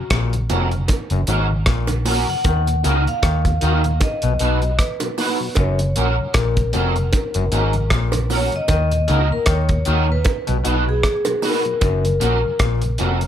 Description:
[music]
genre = roots reggae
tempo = 77 BPM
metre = 4/4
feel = swing 57% on 16ths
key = unclear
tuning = A4 = 440 Hz
[part]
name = vibraphone with medium hard mallets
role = melody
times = 0.0-12.6 s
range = Ab4 to Gb5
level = -24 LUFS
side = left 2 dB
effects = tape echo
[part]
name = tonewheel organ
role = accompaniment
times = 0.0-13.3 s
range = Eb2 to Gb4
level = -29 LUFS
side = left 3 dB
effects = chorus vibrato, slow rotary speaker
[part]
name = overdriven clav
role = riff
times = 0.1-13.2 s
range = F2 to Eb3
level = -27 LUFS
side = left 8 dB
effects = none
[part]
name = vintage muted fingered electric bass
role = bass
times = 0.1-13.3 s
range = F1 to Eb2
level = -20 LUFS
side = equal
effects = none
[part]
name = cloth-damped thuddy drum kit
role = drums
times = 0.1-13.3 s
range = hi-hat, kick drum, rim click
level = -21 LUFS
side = equal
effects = none
[part]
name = electric guitar at the edge of break-up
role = accompaniment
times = 0.5-13.2 s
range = Db4 to B4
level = -25 LUFS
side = right 4 dB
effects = ensemble chorus, tape echo
[part]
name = bongos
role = percussion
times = 0.5-12.0 s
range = none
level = -28 LUFS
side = right 4 dB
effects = none
[sound]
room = light reverb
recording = none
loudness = -16 LUFS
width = side -10 dB against mid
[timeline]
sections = 0.0-13.3 A section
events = none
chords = 0.0 Gb; 2.4 Ebm; 4.0 B; 5.6 Gb; 8.7 Ebm; 10.3 B; 11.8 Gb

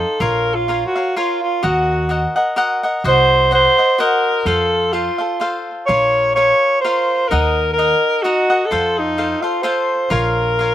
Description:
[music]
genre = mexican folk, mariachi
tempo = 127 BPM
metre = 3/4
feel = swing 55% on 8ths, rubato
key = Bb harmonic minor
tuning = A4 = 440 Hz
[part]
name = clear alto saxophone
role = melody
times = 0.0-10.7 s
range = Eb4 to Db5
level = -15 LUFS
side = equal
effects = none
[part]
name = cavaquinho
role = accompaniment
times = 0.0-10.7 s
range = Eb4 to Gb5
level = -20 LUFS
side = left 2 dB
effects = slapback echo
[part]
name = upright bass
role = bass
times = 0.0-10.7 s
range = Bb1 to F2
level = -22 LUFS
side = right 1 dB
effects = none
[sound]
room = little or no reverb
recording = recorded outdoors, with no room sound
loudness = -14 LUFS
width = side -12 dB against mid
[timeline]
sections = 0.2-10.7 A section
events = none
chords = 0.2 Bbm; 1.6 Ebm; 3.0 Cdim; 4.5 F; 5.9 Bbm; 7.3 Ebm; 8.7 F; 10.1 Bbm

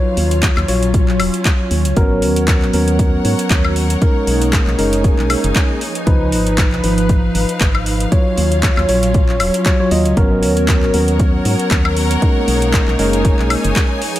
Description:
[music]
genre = deep house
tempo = 117 BPM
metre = 4/4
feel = swing 55% on 16ths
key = unclear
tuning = A4 = 440 Hz
[part]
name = hollow soft pad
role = sustained chords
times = 0.0-14.2 s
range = F3 to Db5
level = -23 LUFS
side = equal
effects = ensemble chorus, sidechain pumping
[part]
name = tine electric piano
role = stabs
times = 0.0-14.0 s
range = F3 to Eb5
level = -18 LUFS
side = equal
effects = sidechain pumping, dub echo
[part]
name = clear studio string section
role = texture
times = 0.0-14.2 s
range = Gb3 to G#5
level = -26 LUFS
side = left 1 dB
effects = sidechain pumping
[part]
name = organ-like FM bass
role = bass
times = 0.2-13.7 s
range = Eb1 to Ab2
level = -18 LUFS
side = equal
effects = tube saturation, sidechain pumping
[part]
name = deep house drum kit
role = drums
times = 0.2-14.2 s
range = handclaps, hi-hat, woodblock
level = -21 LUFS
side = left 1 dB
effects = overdrive
[part]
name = electronic kick drum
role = drums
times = 0.4-13.9 s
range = none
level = -15 LUFS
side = equal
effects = overdrive
[sound]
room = digital ambience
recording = none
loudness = -12 LUFS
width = side -14 dB against mid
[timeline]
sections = 0.0-14.2 A section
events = fade-in on string section 0.0-14.2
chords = 0.0 Ebm9; 2.0 Abm11; 4.0 Bmaj13; 5.8 Db9; 8.1 Ebm9; 10.2 Abm11; 12.2 Bmaj13

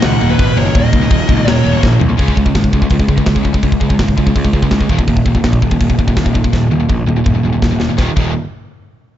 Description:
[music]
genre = heavy metal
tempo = 165 BPM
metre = 4/4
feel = straight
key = Eb minor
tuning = A4 = 440 Hz
[part]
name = high-gain lead guitar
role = melody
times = 0.0-1.8 s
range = Cb5 to Gb5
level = -20 LUFS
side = left 1 dB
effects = distortion, digital delay
[part]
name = pipe organ, clarinet reed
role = sustained chords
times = 0.0-2.1 s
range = Gb3 to Eb5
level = -28 LUFS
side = left 1 dB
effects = none
[part]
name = overdriven electric guitar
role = riff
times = 0.0-2.0 s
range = Eb2 to Eb4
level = -20 LUFS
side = left 1 dB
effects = none
[part]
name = sludgy distorted guitar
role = riff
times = 0.0-8.3 s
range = Eb2 to Db4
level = -17 LUFS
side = right 6 dB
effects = overdrive
[part]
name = tight distorted guitar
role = riff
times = 0.0-8.3 s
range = Eb2 to Db4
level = -19 LUFS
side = left 9 dB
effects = distortion
[part]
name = fuzz picked electric bass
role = bass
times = 0.0-8.3 s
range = Eb1 to Db2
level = -18 LUFS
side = equal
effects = overdrive
[part]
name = tight metal drum kit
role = drums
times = 0.0-8.3 s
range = crash cymbal, hi-hat, kick drum, snare drum, toms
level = -15 LUFS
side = equal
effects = none
[sound]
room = little or no reverb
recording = dark, warm production, nothing above 7.8 kHz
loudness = -11 LUFS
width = side -11 dB against mid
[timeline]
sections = 0.0-2.2 A section; 2.2-8.0 B section; 8.0-9.2 C section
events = half time 0.0-2.2; drum fill 1.8-2.2, 6.5-8.0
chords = 0.0 Ebm; 2.2 Db5; 4.9 Eb5

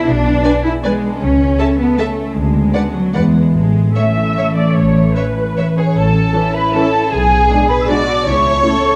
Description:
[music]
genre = classical, orchestral ballroom waltz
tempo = 139-172 BPM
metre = 3/4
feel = rubato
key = A major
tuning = A4 = 440 Hz
[part]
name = concert harp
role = arpeggios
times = 0.0-9.0 s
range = A2 to E5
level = -20 LUFS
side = equal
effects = none
[part]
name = warm studio cello section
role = bass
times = 0.0-9.0 s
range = F#3 to A4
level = -20 LUFS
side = equal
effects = none
[part]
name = rich studio double bass section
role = bass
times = 0.1-8.6 s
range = A1 to E2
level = -22 LUFS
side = equal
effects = none
[part]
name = warm studio violin section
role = melody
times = 0.4-9.0 s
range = G#4 to A5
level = -26 LUFS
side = equal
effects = none
[part]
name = dark studio violin section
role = second line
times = 0.4-9.0 s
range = G#4 to E5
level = -25 LUFS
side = equal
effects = none
[part]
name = dark studio viola section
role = accompaniment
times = 0.5-8.7 s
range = E3 to E5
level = -24 LUFS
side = equal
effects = none
[part]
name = bright flute section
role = second line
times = 5.8-9.0 s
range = G#5 to E6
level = -19 LUFS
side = equal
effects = none
[part]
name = clear French horn section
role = sustained chords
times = 6.3-8.8 s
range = E3 to D4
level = -24 LUFS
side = equal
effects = none
[sound]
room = wet scoring stage reverb, RT60 1.8 s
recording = none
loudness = -14 LUFS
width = mono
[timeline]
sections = 0.0-6.0 A section; 6.0-9.0 B section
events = none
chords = 0.0 G#dim/B; 1.2 A/C#; 2.4 Bm/D; 3.1 E9; 3.5 A; 7.1 G#dim/B; 8.3 A/C#

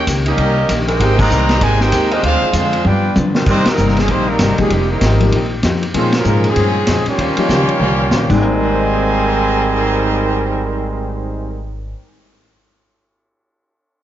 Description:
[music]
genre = jazz, big band swing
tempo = 194 BPM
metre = 4/4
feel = swing 62% on 8ths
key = Ab major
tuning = A4 = 440 Hz
[part]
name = clear trumpet section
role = melody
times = 0.0-11.7 s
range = G3 to Bb5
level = -19 LUFS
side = equal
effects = none
[part]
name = bright trombone section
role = second line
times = 0.0-11.7 s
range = Ab2 to Ab4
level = -20 LUFS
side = right 3 dB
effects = none
[part]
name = upright bass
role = bass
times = 0.0-11.9 s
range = F1 to D3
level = -18 LUFS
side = equal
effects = none
[part]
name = archtop guitar, miked and amplified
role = accompaniment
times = 0.1-12.1 s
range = G2 to C5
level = -23 LUFS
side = left 4 dB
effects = none
[part]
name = vintage drum kit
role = drums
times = 0.1-8.4 s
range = crash cymbal, hi-hat, kick drum, ride cymbal, snare drum, toms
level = -20 LUFS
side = equal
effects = none
[part]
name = warm saxophone section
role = sustained chords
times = 0.9-3.8 s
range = G3 to C5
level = -24 LUFS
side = right 1 dB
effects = none
[part]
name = clear grand piano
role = accompaniment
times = 4.6-12.7 s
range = Ab2 to Bb6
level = -21 LUFS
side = left 4 dB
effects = none
[sound]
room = moderate scoring stage reverb, RT60 1.6 s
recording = worn, warbling old tape, cassette tape, warbly pitch drift, nothing above 7.6 kHz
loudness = -12 LUFS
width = side -12 dB against mid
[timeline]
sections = 0.0-3.5 A section; 3.5-8.4 B section; 8.4-10.9 C section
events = band accent 1.2, 3.6, 6.1; drum fill 2.9-3.5, 7.8-8.4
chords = 0.0 Eb7; 1.0 Abmaj9; 2.2 Dm7b5; 2.9 G7; 3.5 Cm7; 4.7 F9sus4; 5.9 Bbm11; 7.2 Eb13; 8.3 Abmaj9

